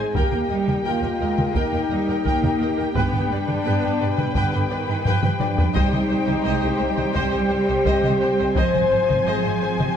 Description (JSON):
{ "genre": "cinematic, epic orchestral film score", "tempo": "86 BPM", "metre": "4/4", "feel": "straight", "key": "C minor", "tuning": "A4 = 445 Hz", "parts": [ { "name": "warm symphonic violin section", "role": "melody", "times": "0.0-10.0 s", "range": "G5 to Ab5", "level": "-30 LUFS", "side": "left 3 dB", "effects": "none" }, { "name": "rich symphonic violin section", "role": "second line", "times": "0.0-9.9 s", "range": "C5 to G5", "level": "-32 LUFS", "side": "left 3 dB", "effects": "none" }, { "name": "bright symphonic viola section", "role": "accompaniment", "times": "0.0-9.9 s", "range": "Bb4 to C5", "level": "-32 LUFS", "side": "right 1 dB", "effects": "none" }, { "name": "mellow French horn section", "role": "sustained chords", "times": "0.0-10.0 s", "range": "B3 to C5", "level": "-24 LUFS", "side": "left 2 dB", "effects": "none" }, { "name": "rich symphonic string section", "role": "sustained chords", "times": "0.0-10.0 s", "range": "C4 to Ab5", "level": "-29 LUFS", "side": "left 1 dB", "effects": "none" }, { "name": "rich symphonic cello section", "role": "bass", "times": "0.0-10.0 s", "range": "B2 to B3", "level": "-26 LUFS", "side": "right 3 dB", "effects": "none" }, { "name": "warm symphonic double bass section", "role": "bass", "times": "0.0-9.9 s", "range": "Ab1 to G2", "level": "-27 LUFS", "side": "right 3 dB", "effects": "none" }, { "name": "taiko ensemble", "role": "drums", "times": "0.1-10.0 s", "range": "none", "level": "-25 LUFS", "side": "equal", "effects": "none" } ], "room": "moderate scoring stage reverb, RT60 1.6 s", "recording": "none", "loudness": "-18 LUFS", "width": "side -8 dB against mid", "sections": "0.0-10.0 A section", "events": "drum fill 5.1-5.8", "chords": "0.2 Eb; 3.0 G; 5.8 Cm; 8.6 Ab" }